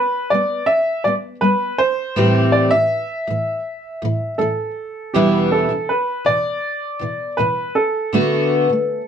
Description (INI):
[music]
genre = acoustic pop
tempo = 80 BPM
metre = 4/4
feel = straight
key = G major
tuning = A4 = 439 Hz
[part]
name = warm upright piano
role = melody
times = 0.0-9.1 s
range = G4 to E5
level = -19 LUFS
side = right 1 dB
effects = none
[part]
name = fingerpicked twelve-string acoustic guitar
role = accompaniment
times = 0.0-9.0 s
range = E2 to G4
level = -18 LUFS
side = equal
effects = wide subtle chorus
[sound]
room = moderate studio reverb, RT60 0.6 s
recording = dark, warm production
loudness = -16 LUFS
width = side -8 dB against mid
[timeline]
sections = 0.0-9.1 A section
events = none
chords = 0.0 G; 2.2 Am7; 5.1 Em7; 8.1 D6